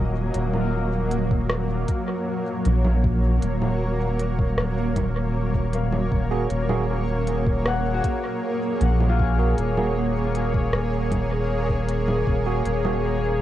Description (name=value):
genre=ambient dub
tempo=78 BPM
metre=4/4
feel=straight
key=unclear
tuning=A4 = 440 Hz
part: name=granular cloud pad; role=sustained chords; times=0.0-13.4 s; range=Gb3 to Eb5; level=-26 LUFS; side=equal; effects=built-in reverb, cassette tape
part: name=concert harp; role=arpeggios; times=0.0-12.8 s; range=Bb3 to Ab5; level=-34 LUFS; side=left 8 dB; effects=cassette tape, tape echo
part: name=soft dub sub bass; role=bass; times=0.0-13.4 s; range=Eb1 to Bb1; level=-23 LUFS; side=equal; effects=none
part: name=organic electronic drum kit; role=drums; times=0.3-13.0 s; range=congas, hi-hat, rim click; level=-30 LUFS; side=right 2 dB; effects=dub echo
part: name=electronic kick drum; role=drums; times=1.3-12.4 s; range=none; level=-25 LUFS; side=equal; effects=none
part: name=tine electric piano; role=stabs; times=6.3-13.0 s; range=Bb3 to Ab4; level=-31 LUFS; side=right 7 dB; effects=slow stereo tremolo, cassette tape, dub echo
room=light reverb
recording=home recording on cassette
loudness=-21 LUFS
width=side -13 dB against mid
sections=0.0-13.4 A section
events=none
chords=0.0 Gbadd9/Eb